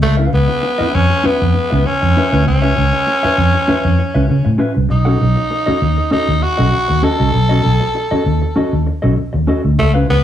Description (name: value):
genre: funk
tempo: 98 BPM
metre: 4/4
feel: straight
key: unclear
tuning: A4 = 440 Hz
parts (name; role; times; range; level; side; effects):
- growling tenor saxophone; melody; 0.0-10.2 s; A3 to A4; -17 LUFS; equal; plate reverb
- mellow electric guitar; accompaniment; 0.0-10.1 s; C#4 to F#5; -19 LUFS; left 2 dB; plate reverb
- vintage muted fingered electric bass; bass; 0.0-10.2 s; B1 to C#3; -14 LUFS; equal; none
room: light reverb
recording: studio reverb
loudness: -12 LUFS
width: side -10 dB against mid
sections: 0.0-10.2 A section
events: none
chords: 0.0 C#7#9; 4.9 B9